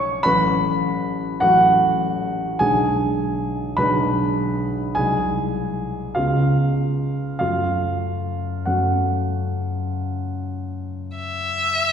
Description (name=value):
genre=classical, romantic duo for violin and grand piano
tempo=47-52 BPM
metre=4/4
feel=rubato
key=F# minor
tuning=A4 = 440 Hz
part: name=dark grand piano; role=accompaniment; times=0.0-11.9 s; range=A1 to C#6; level=-19 LUFS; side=equal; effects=none
part: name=clear violin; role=melody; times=11.2-11.9 s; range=E5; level=-20 LUFS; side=left 2 dB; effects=none
room=wet concert hall reverb, RT60 2.3 s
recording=recorded in a church or concert hall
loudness=-19 LUFS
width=side -8 dB against mid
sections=0.0-11.9 A section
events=none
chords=0.3 F#m/A; 2.6 G#dim/B; 5.0 G#7/B#; 6.2 C#7; 7.4 F#m